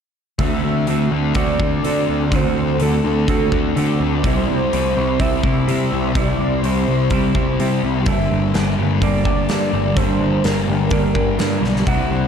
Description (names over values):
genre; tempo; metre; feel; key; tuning
rock, shoegaze and dream pop; 125 BPM; 4/4; straight; D mixolydian; A4 = 440 Hz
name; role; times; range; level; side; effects
warm velvety synth lead; melody; 0.4-12.3 s; A4 to F#5; -25 LUFS; equal; chorus, slapback echo
granular cloud pad; sustained chords; 1.3-12.3 s; G4 to D6; -31 LUFS; equal; built-in reverb
crunchy overdriven guitar; riff; 0.4-12.3 s; G2 to F#4; -22 LUFS; right 12 dB; reverse reverb
thick fuzz guitar; riff; 0.4-12.3 s; G2 to D4; -22 LUFS; left 10 dB; distortion, lush chorus
growling picked electric bass; bass; 0.4-12.3 s; G1 to D3; -22 LUFS; equal; overdrive
huge arena drum kit; drums; 0.4-12.0 s; hi-hat, kick drum, snare drum; -23 LUFS; equal; none
room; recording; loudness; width
light reverb, small room ambience; dark, warm production; -16 LUFS; side -7 dB against mid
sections
0.4-12.3 A section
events
none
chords
0.4 D7; 4.2 C; 8.1 Gm6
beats
| 0.40 0.88 1.36 1.84 | 2.32 2.80 3.28 3.76 | 4.24 4.72 5.20 5.68 | 6.16 6.63 7.11 7.59 | 8.07 8.54 9.02 9.50 | 9.97 10.45 10.93 11.40 | 11.88